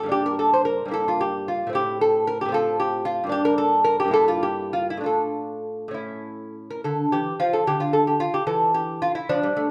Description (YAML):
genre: classical, baroque-style dance for lute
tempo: 63-78 BPM (dotted quarters)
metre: 6/8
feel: rubato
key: D minor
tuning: A4 = 440 Hz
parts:
  - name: lute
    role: solo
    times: 0.0-9.7 s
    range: G2 to C5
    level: -23 LUFS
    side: equal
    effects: none
room: moderate large studio reverb, RT60 1.2 s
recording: band playing live in one room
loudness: -23 LUFS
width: mono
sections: 0.0-6.8 A section; 6.8-9.7 B section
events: none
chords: 0.1 Gm; 1.0 Edim/G; 1.8 Am; 2.5 F/A; 3.3 Gm; 4.1 Edim/G; 5.1 Dm/A; 6.0 A; 6.8 Dm; 8.5 N.C.